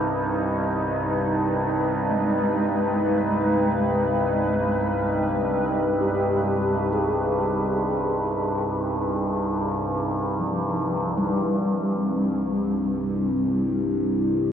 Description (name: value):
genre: dark ambient drone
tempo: free time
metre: none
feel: none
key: unclear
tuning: A4 = 442 Hz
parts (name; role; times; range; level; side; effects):
- deep dark ambient pad; sustained chords; 0.0-11.2 s; Eb4 to Cb5; -26 LUFS; equal; chorus, built-in reverb
- gamelan-type bronze metallophone; arpeggios; 0.0-14.5 s; F3 to Ab4; -28 LUFS; left 1 dB; diffuse ambient delay
- overtone-sweeping drone; drone; 0.0-14.5 s; C2 to G2; -24 LUFS; equal; chorus, built-in reverb
room: wet huge ambient reverb, RT60 7.8 s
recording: worn, warbling old tape, cassette tape, warbly pitch drift, nothing above 11.0 kHz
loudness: -21 LUFS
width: side -8 dB against mid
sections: 0.0-11.2 A section; 11.2-14.5 B section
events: none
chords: 0.0 Abm; 11.2 C5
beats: free time